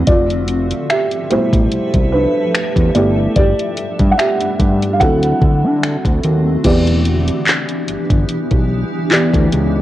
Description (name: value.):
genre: contemporary R&B.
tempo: 73 BPM.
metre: 4/4.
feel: swing 54% on 16ths.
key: unclear.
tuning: A4 = 442 Hz.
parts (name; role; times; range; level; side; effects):
felt-muted upright piano; accompaniment; 0.0-9.8 s; B2 to F#5; -17 LUFS; right 1 dB; cassette tape.
granular cloud pad; sustained chords; 0.0-9.8 s; D3 to E5; -22 LUFS; equal; built-in reverb, sidechain pumping, cassette tape.
fat analog bass; bass; 0.0-9.8 s; E1 to D3; -17 LUFS; equal; none.
smooth R&B drum kit; drums; 0.1-9.7 s; crash cymbal, finger snaps, handclaps, hi-hat, kick drum; -16 LUFS; equal; cassette tape.
room: light reverb, digital ambience.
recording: home recording on cassette.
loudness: -13 LUFS.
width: side -14 dB against mid.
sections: 0.0-6.6 A section; 6.6-9.8 B section.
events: felt piano solo 0.0-6.6.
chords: 0.1 Fmaj9#11; 2.9 G6; 5.0 D7; 6.6 Em7.